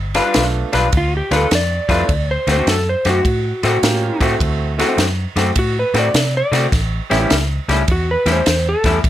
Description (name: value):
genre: electric blues shuffle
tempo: 104 BPM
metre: 4/4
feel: swing 66% on 8ths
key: D mixolydian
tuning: A4 = 440 Hz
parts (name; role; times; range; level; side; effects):
- vintage muted fingered electric bass; bass; 0.0-9.1 s; G1 to C3; -20 LUFS; equal; none
- electric guitar through a small old amp; riff; 0.1-9.0 s; A2 to B4; -18 LUFS; left 2 dB; none
- compact cocktail drum kit; drums; 0.1-9.1 s; kick drum, ride cymbal, snare drum; -20 LUFS; equal; none
- clear upright piano; accompaniment; 0.3-7.3 s; A3 to A4; -23 LUFS; right 5 dB; none
- electric slide guitar; melody; 1.0-9.0 s; F4 to D5; -19 LUFS; equal; none
room: light reverb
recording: none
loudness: -14 LUFS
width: side -12 dB against mid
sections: 0.0-9.1 A section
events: none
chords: 0.0 G7; 2.1 D7; 6.7 A7